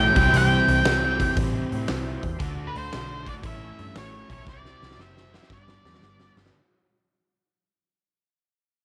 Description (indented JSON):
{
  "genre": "blues rock power trio and southern rock",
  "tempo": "116 BPM",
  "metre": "4/4",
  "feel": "swing 67% on 8ths",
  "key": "unclear",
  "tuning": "A4 = 436 Hz",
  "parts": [
    { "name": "octave-fuzz lead guitar", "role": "melody", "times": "0.0-6.3 s", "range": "B4 to G5", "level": "-26 LUFS", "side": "equal", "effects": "distortion" },
    { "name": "overdriven tonewheel organ", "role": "sustained chords", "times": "0.0-6.5 s", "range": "B3 to D5", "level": "-40 LUFS", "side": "equal", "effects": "none" },
    { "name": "cranked stack guitar", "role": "riff", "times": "0.0-6.5 s", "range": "G2 to F#4", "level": "-30 LUFS", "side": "equal", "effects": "overdrive" },
    { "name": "vintage muted picked electric bass", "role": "bass", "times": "0.0-6.5 s", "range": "F#1 to A2", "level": "-30 LUFS", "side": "equal", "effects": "none" },
    { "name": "huge arena drum kit", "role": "drums", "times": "0.2-6.5 s", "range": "hi-hat, kick drum, snare drum", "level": "-31 LUFS", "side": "equal", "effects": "none" }
  ],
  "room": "light reverb, small room reverb",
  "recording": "none",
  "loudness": "-23 LUFS",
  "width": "mono",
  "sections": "0.0-6.5 A section",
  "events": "fade-out 0.0-6.5; drum fill 4.5-6.5",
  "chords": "0.1 C; 2.4 D; 3.4 A; 4.5 C; 5.5 G",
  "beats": "| 0.34 0.86 1.38 1.89 | 2.41 2.93 3.45 3.96 | 4.48 5.00 5.51 6.03"
}